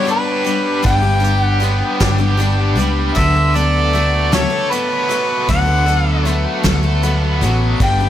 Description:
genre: folk rock and heartland rock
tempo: 52 BPM (dotted quarters)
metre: 6/8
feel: straight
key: D major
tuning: A4 = 441 Hz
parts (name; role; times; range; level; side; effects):
- mellow harmonica; melody; 0.0-8.1 s; B4 to G5; -19 LUFS; equal; dub echo
- picked twelve-string acoustic guitar; accompaniment; 0.0-8.1 s; G2 to A4; -22 LUFS; left 6 dB; dub echo
- biting overdriven guitar; riff; 0.0-8.1 s; G2 to A4; -21 LUFS; right 1 dB; tremolo
- soft brush drum kit; drums; 0.1-8.0 s; hi-hat, kick drum, snare drum; -20 LUFS; equal; none
- hollow-body short-scale picked electric bass; bass; 0.8-8.1 s; G1 to D2; -16 LUFS; equal; none
room: light reverb, studio reverb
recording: echo-heavy mix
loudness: -13 LUFS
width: side -11 dB against mid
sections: 0.0-8.1 A section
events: none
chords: 0.0 G; 3.2 D6

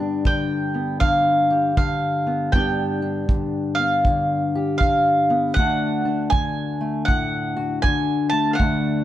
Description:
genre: acoustic country blues, solo or duo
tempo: 79 BPM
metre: 4/4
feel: swing 64% on 8ths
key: unclear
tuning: A4 = 441 Hz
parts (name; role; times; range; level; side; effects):
- fingerpicked old ladder-braced acoustic guitar; accompaniment; 0.0-9.0 s; D2 to G4; -23 LUFS; left 2 dB; none
- mandolin; melody; 0.3-9.0 s; F5 to A5; -21 LUFS; right 1 dB; plate reverb
- kick drum; drums; 0.3-8.8 s; none; -22 LUFS; right 1 dB; none
room: light reverb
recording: dark, warm production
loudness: -18 LUFS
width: side -12 dB against mid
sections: 0.0-9.0 A section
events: none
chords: 0.0 G; 5.6 D

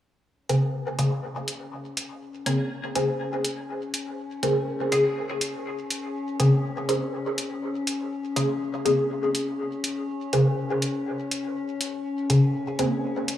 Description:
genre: dub techno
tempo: 122 BPM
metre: 4/4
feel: straight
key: unclear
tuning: A4 = 440 Hz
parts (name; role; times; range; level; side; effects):
- metallic inharmonic drone; texture; 1.4-13.4 s; Db4; -32 LUFS; left 3 dB; chorus, built-in reverb
- filtered dub chord stab; stabs; 0.5-12.9 s; Db3 to Ab4; -24 LUFS; equal; phaser, dub echo
- electronic hi-hat; drums; 0.5-13.4 s; none; -30 LUFS; equal; none
room: wet lush hall reverb, RT60 1.9 s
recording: small room ambience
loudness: -24 LUFS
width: side -12 dB against mid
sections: 0.2-13.4 A section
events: filter sweep on synth stab 0.2-13.4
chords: none

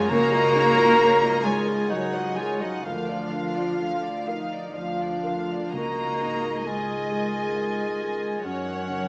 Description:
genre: cinematic, emotional film score for orchestra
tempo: 59-70 BPM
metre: 3/4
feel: rubato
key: Db major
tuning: A4 = 440 Hz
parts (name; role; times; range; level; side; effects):
- dark studio violin section; melody; 0.0-9.1 s; Db5 to F5; -34 LUFS; equal; none
- clear clarinet; second line; 0.0-9.1 s; Db4 to Gb4; -32 LUFS; equal; none
- mellow hollow silver concert flute; second line; 0.0-9.1 s; F5 to Bb5; -29 LUFS; equal; none
- warm studio violin section; second line; 0.0-9.1 s; F5 to Bb5; -34 LUFS; equal; none
- dark grand piano; accompaniment; 0.0-9.1 s; Db2 to Eb5; -35 LUFS; equal; none
- rich studio viola section; accompaniment; 0.0-9.1 s; D3 to Bb4; -35 LUFS; equal; none
- mellow French horn section; sustained chords; 0.0-9.1 s; F4 to Bb4; -26 LUFS; equal; none
- warm studio cello section; bass; 0.0-9.1 s; F3 to Bb3; -28 LUFS; equal; none
- dark studio double bass section; bass; 0.1-9.1 s; Db2 to Gb2; -36 LUFS; equal; none
room: wet scoring stage reverb, RT60 1.9 s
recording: small speaker sound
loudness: -21 LUFS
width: side -36 dB against mid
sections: 0.0-9.1 A section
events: none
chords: 0.1 Dbadd9; 2.9 Bb/D; 5.7 Dbadd9; 8.4 Gb

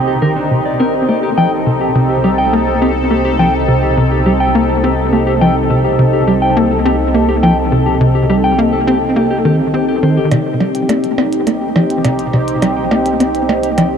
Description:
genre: ambient, sequencer-driven space music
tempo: 104 BPM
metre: 4/4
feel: straight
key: unclear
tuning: A4 = 440 Hz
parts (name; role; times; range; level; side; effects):
- sweeping resonant pad; sustained chords; 0.0-14.0 s; C4 to A4; -16 LUFS; equal; chorus
- tight sequencer bass; riff; 0.0-13.9 s; C3 to C4; -14 LUFS; equal; analog chorus, analog delay
- fat analog bass; bass; 0.0-14.0 s; C2; -22 LUFS; equal; none
- mellow electric guitar; arpeggios; 0.1-13.9 s; D4 to G5; -19 LUFS; moving between left 5 dB and right 1 dB; auto-pan, analog delay
- electronic hi-hat and percussion blips; percussion; 10.3-13.9 s; none; -24 LUFS; right 4 dB; analog delay
room: wet huge ambient reverb, RT60 7.4 s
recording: dark, warm production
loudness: -11 LUFS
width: side -7 dB against mid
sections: 0.0-10.3 A section; 10.3-14.0 B section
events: filter sweep on analog synth bass 0.0-10.3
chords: 0.0 Cm

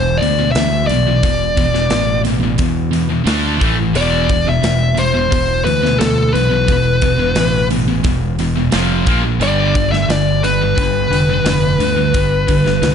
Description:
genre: heavy metal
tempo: 88 BPM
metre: 4/4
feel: straight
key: E phrygian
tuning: A4 = 441 Hz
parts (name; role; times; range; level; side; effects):
- high-gain lead guitar; melody; 0.0-12.9 s; A4 to E5; -17 LUFS; left 3 dB; distortion
- high-gain distorted guitar; riff; 0.0-12.9 s; E2 to D4; -20 LUFS; left 10 dB; distortion
- sludgy distorted guitar; riff; 0.0-12.9 s; E2 to D4; -20 LUFS; right 12 dB; overdrive
- growling fingered electric bass; bass; 0.0-12.9 s; E1 to E2; -19 LUFS; equal; overdrive
- tight metal drum kit; drums; 0.2-12.9 s; hi-hat, kick drum, snare drum; -21 LUFS; equal; none
room: small room ambience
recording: dark, warm production, nothing above 10.7 kHz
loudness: -12 LUFS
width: side -7 dB against mid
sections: 0.0-12.9 A section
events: none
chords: 0.0 E5; 3.3 D5; 3.6 A5; 4.0 E5; 8.7 F5; 9.1 A#5; 9.4 G

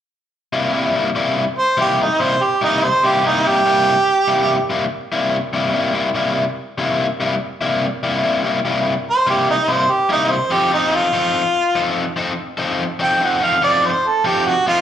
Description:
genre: blues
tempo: 96 BPM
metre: 4/4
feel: swing 67% on 8ths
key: C mixolydian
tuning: A4 = 441 Hz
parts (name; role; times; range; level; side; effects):
- overdriven semi-hollow guitar; riff; 0.5-14.8 s; C3 to A4; -18 LUFS; left 3 dB; spring reverb, slapback echo
- mellow harmonica; melody; 1.6-4.7, 9.1-14.8 s; Eb4 to G5; -16 LUFS; right 2 dB; overdrive, slapback echo
room: light reverb, small room ambience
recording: live gig heard through the venue's PA, club reverb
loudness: -15 LUFS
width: side -10 dB against mid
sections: 0.5-14.8 A section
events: none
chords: 0.5 C7; 10.5 F7

